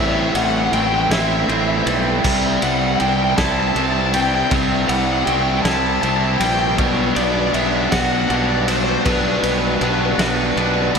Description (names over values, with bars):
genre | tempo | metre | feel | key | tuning
post-rock | 53 BPM (dotted quarters) | 6/8 | straight | unclear | A4 = 439 Hz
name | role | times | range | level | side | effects
overdriven electric guitar | melody | 0.0-10.9 s | B4 to A5 | -22 LUFS | left 2 dB | lush chorus, analog delay
twangy electric guitar | arpeggios | 0.0-11.0 s | A2 to F#4 | -26 LUFS | left 2 dB | analog delay
distorted electric guitar | riff | 0.0-11.0 s | A2 to E4 | -19 LUFS | right 1 dB | distortion
fuzz fingered electric bass | bass | 0.0-11.0 s | A1 to D2 | -23 LUFS | equal | overdrive
loose indie drum kit | drums | 0.3-11.0 s | crash cymbal, kick drum, ride cymbal, snare drum | -23 LUFS | equal | none
room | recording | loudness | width
moderate lush hall reverb, RT60 2.6 s | dreamy mix soaked in reverb | -15 LUFS | side -6 dB against mid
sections
0.0-11.0 A section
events
none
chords
0.0 Am7; 2.2 C; 6.8 Gmaj7/B